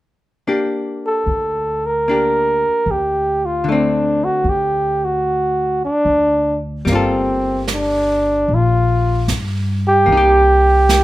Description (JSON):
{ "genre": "jazz ballad", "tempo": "75 BPM", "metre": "4/4", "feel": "swing 69% on 8ths", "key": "G minor", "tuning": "A4 = 441 Hz", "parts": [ { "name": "archtop guitar, miked and amplified", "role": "accompaniment", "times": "0.5-11.0 s", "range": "D3 to A4", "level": "-22 LUFS", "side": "left 2 dB", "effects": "none" }, { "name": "mellow flugelhorn", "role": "melody", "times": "1.1-11.0 s", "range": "C4 to Bb4", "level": "-15 LUFS", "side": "right 1 dB", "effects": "none" }, { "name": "upright bass", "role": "bass", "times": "1.3-11.0 s", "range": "G1 to G2", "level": "-20 LUFS", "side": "left 1 dB", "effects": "none" }, { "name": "jazz brush drum kit", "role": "drums", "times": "6.9-11.0 s", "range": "brushed snare drum, hi-hat, snare drum", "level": "-24 LUFS", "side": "right 3 dB", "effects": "none" } ], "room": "light reverb", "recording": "minimal, uncompressed stereo recording", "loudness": "-14 LUFS", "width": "side -16 dB against mid", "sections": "0.5-6.9 A section; 6.9-11.0 B section", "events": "none", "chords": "0.5 Gmadd9/D; 3.7 D7; 6.9 Gm9; 10.1 Cm7" }